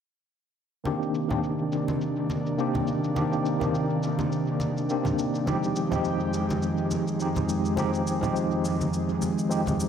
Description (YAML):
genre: sunset chillout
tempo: 104 BPM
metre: 4/4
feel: swing 57% on 16ths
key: C minor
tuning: A4 = 440 Hz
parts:
  - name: barky tine electric piano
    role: accompaniment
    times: 0.8-9.9 s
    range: Eb3 to G4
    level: -27 LUFS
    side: equal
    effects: medium stereo tremolo, auto-pan, low-pass filter, dub echo
  - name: airy breathy pad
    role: sustained chords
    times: 0.9-9.9 s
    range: F2 to G4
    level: -29 LUFS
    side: right 1 dB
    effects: chorus
  - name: shaker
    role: drums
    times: 0.9-9.9 s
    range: none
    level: -43 LUFS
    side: left 1 dB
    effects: overdrive, low-pass filter on perc, studio reverb, dub echo
  - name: congas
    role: percussion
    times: 0.9-9.8 s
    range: none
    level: -34 LUFS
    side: left 1 dB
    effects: dub echo
room: wet echo chamber reverb, RT60 1.5 s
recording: echo-heavy mix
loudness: -24 LUFS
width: side -8 dB against mid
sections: 0.9-9.9 A section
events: filter sweep on tine electric piano 0.9-9.9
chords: 0.9 Cm9; 5.5 Fm9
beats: | 0.86 1.43 2.01 2.59 | 3.16 3.74 4.32 4.89 | 5.47 6.05 6.62 7.20 | 7.78 8.36 8.93 9.51